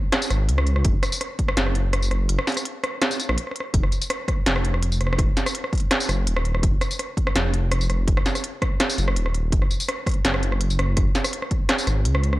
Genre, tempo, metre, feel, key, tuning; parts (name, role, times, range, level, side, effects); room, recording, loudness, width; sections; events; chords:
half-time drum and bass; 166 BPM; 4/4; half-time; A4 = 440 Hz
industrial drum kit; drums; 0.1-12.4 s; hi-hat, rim click, snare drum, tambourine; -24 LUFS; equal
dark detuned saw bass; bass; 0.3-12.4 s; Eb1 to Db2; -22 LUFS; equal
electronic kick drum; drums; 0.8-1.5, 3.7-11.6 s; -22 LUFS; equal
little or no reverb; dry, gritty hardware recording; -20 LUFS; side -18 dB against mid
0.0-12.4 A section
break 2.3-3.7